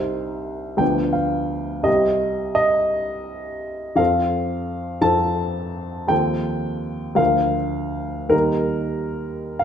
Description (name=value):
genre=classical, romantic character piece for solo piano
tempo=56 BPM (dotted quarters)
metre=6/8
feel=rubato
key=unclear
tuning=A4 = 440 Hz
part: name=warm upright piano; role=solo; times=0.0-9.6 s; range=C2 to A5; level=-19 LUFS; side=equal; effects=none
room=wet recital hall reverb, RT60 1.4 s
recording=minimal, uncompressed stereo recording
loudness=-19 LUFS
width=side -8 dB against mid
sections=0.0-9.6 A section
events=none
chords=0.0 Cm; 0.8 Bdim/D; 1.9 Cm; 4.0 F; 6.1 F7/Eb; 7.2 Bb/D; 8.3 Eb